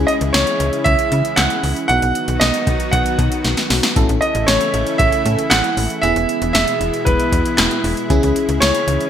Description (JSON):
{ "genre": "synth-pop", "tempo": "116 BPM", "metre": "4/4", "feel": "straight", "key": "C# minor", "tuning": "A4 = 440 Hz", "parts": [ { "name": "FM electric piano", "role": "accompaniment", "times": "0.0-9.1 s", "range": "B3 to A4", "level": "-23 LUFS", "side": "left 2 dB", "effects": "chorus, phaser" }, { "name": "lush unison pad", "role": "sustained chords", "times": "0.0-9.1 s", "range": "B2 to F#4", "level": "-24 LUFS", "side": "equal", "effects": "chorus" }, { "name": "slap-like FM bass", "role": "bass", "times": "0.0-9.0 s", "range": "E1 to C#3", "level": "-20 LUFS", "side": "equal", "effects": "none" }, { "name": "clear baby grand piano", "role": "melody", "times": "0.1-9.1 s", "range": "B4 to F#5", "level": "-19 LUFS", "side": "right 2 dB", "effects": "digital delay" }, { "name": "electro analog drum machine", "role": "drums", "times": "0.1-9.1 s", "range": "handclaps, hi-hat, kick drum, snare drum", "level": "-18 LUFS", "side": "equal", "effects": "gated reverb" } ], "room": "light reverb, digital ambience", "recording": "bright 1980s-style digital production", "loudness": "-14 LUFS", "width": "side -9 dB against mid", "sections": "0.0-9.1 A section", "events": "drum fill 3.4-4.0", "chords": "0.0 C#m; 1.9 B; 4.0 A; 6.0 E; 8.1 C#m" }